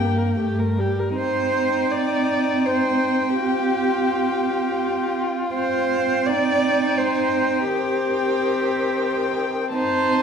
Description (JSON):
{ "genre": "classical, slow romantic movement for string quartet", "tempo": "74-88 BPM", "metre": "3/4", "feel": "rubato", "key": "C minor", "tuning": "A4 = 441 Hz", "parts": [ { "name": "dark violin", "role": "melody", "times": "0.0-10.2 s", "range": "G5 to A5", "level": "-29 LUFS", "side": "left 7 dB", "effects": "none" }, { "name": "dark violin", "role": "second line", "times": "0.0-10.2 s", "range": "C4 to Bb4", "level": "-27 LUFS", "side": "left 4 dB", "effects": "none" }, { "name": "dark viola", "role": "accompaniment", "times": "0.0-10.2 s", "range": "Eb3 to C4", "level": "-25 LUFS", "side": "right 3 dB", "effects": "none" }, { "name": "dark cello", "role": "bass", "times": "0.0-10.2 s", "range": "G2 to D5", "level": "-22 LUFS", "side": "right 2 dB", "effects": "none" } ], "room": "wet recital hall reverb, RT60 1.8 s", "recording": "recorded in a church or concert hall", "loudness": "-19 LUFS", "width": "side -6 dB against mid", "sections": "0.0-1.2 A section; 1.2-10.2 B section", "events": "none", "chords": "0.0 Gm; 1.2 Cm; 3.4 Csus4; 5.5 Cm; 7.7 Cm/Eb" }